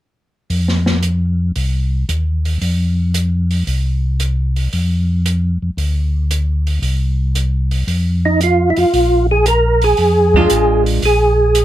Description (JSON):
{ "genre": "soul jazz organ trio", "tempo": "114 BPM", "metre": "4/4", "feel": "swing 69% on 8ths", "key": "Bb mixolydian", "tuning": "A4 = 441 Hz", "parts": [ { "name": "mellow tonewheel organ", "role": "bass", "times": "0.5-11.6 s", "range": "A1 to F2", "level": "-15 LUFS", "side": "equal", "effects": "chorus vibrato, slow rotary speaker" }, { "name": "open jazz drum kit", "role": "drums", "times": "0.5-11.6 s", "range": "hi-hat, kick drum, snare drum", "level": "-23 LUFS", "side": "right 1 dB", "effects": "none" }, { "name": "percussive tonewheel organ", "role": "melody", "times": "8.3-11.6 s", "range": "Eb4 to Bb4", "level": "-13 LUFS", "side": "right 1 dB", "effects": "chorus vibrato, slow rotary speaker" }, { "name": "archtop guitar, miked and amplified", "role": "accompaniment", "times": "10.4-11.0 s", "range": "Ab3 to F4", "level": "-17 LUFS", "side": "right 3 dB", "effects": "none" } ], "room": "little or no reverb", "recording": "none", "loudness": "-13 LUFS", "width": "side -13 dB against mid", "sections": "0.5-8.9 A section; 8.9-11.6 B section", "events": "none", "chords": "0.5 F5; 4.7 Dm; 6.8 N.C.; 7.9 Ebsus2/F; 8.9 Bb7" }